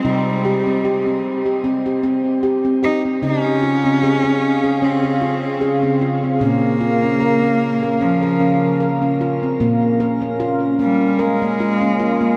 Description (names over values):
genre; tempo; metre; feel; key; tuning
world meditative, meditative tuned percussion; 75 BPM; 4/4; swing 55% on 16ths; unclear; A4 = 440 Hz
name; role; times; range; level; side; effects
rich cello; melody; 0.0-12.4 s; F3 to Eb4; -23 LUFS; equal; shimmer reverb, diffuse ambient delay
handpan; arpeggios; 0.0-12.4 s; Bb2 to Bb4; -21 LUFS; equal; shimmer reverb, diffuse ambient delay
warbly tape-like pad; sustained chords; 3.8-12.4 s; Db3 to F5; -23 LUFS; equal; chorus, built-in reverb, shimmer reverb
room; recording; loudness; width
wet huge ambient reverb, RT60 8.3 s; dreamy mix soaked in reverb; -18 LUFS; mono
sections
0.0-9.6 A section; 9.6-12.4 B section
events
none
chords
0.0 Cm; 3.2 Db; 6.4 Bbm